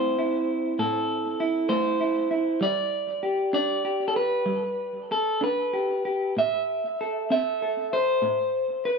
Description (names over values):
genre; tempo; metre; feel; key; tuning
folk, solo fingerstyle acoustic guitar; 65 BPM (dotted quarters); 6/8; rubato; A minor; A4 = 436 Hz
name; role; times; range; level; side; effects
electric guitar through a small old amp; solo; 0.0-9.0 s; A2 to E5; -23 LUFS; equal; tape echo
room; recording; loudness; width
wet small room reverb, RT60 0.6 s; none; -23 LUFS; side -4 dB against mid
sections
0.0-9.0 A section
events
none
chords
0.0 Am; 2.6 G; 6.4 Am